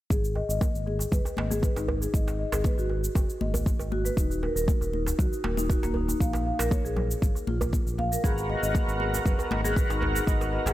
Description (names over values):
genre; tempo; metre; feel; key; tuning
afro house; 118 BPM; 4/4; straight; G# dorian; A4 = 440 Hz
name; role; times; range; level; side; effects
marimba with medium mallets; arpeggios; 0.1-10.7 s; A#3 to E#5; -31 LUFS; left 1 dB; sidechain pumping, low-pass filter, tape echo
smooth synth bass; bass; 0.1-10.7 s; D#1 to C#2; -30 LUFS; equal; sidechain pumping
electronic kick drum; drums; 0.1-10.4 s; none; -26 LUFS; equal; small room ambience
shaker; drums; 0.1-10.7 s; none; -38 LUFS; right 2 dB; overdrive, small room ambience
djembe; percussion; 0.4-10.7 s; none; -36 LUFS; right 2 dB; none
congas; percussion; 0.6-9.7 s; none; -37 LUFS; left 3 dB; tape echo
overdriven tonewheel organ; stabs; 8.2-10.7 s; B3 to A#4; -30 LUFS; right 1 dB; chorus vibrato, slow rotary speaker, sidechain pumping, tape echo
room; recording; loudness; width
light reverb, studio ambience; echo-heavy mix; -24 LUFS; side -14 dB against mid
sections
0.1-10.7 A section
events
filter sweep on marimba 0.1-10.7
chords
0.1 G#5; 4.2 D#5; 6.2 A#5; 8.2 G#m7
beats
| 0.10 0.61 1.12 1.63 | 2.14 2.65 3.15 3.66 | 4.17 4.68 5.19 5.70 | 6.21 6.71 7.22 7.73 | 8.24 8.75 9.26 9.77 | 10.27